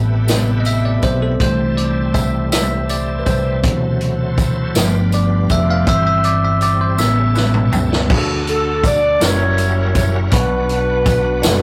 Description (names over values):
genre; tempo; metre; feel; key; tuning
slow gospel; 54 BPM (dotted quarters); 6/8; straight; C major, D major from 8.1 s; A4 = 440 Hz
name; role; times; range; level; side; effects
bell-like tine electric piano; accompaniment; 0.0-11.6 s; B2 to F5; -21 LUFS; equal; phaser
bright tonewheel organ; sustained chords; 0.0-11.6 s; F#3 to C5; -30 LUFS; equal; slow rotary speaker, chorus vibrato
fingered electric bass; bass; 0.0-11.6 s; F1 to D2; -21 LUFS; equal; none
swinging big-band drum kit; drums; 0.3-11.6 s; crash cymbal, hi-hat, kick drum, snare drum, toms; -21 LUFS; equal; none
tambourine; percussion; 0.3-11.6 s; none; -33 LUFS; equal; none
mellow saxophone section; melody; 8.5-11.6 s; D4 to D5; -20 LUFS; equal; tape echo
room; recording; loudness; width
moderate small room reverb, RT60 0.5 s; rough rehearsal-room recording, warm saturation; -16 LUFS; mono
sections
0.0-8.1 A section; 8.1-11.6 B section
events
tine electric piano solo 0.0-8.1; drum fill 7.0-8.1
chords
0.0 Am9; 1.4 C6; 3.6 D13; 4.8 G7; 5.9 C/G; 7.0 A7; 8.1 D; 9.2 F#7b9; 10.3 Bm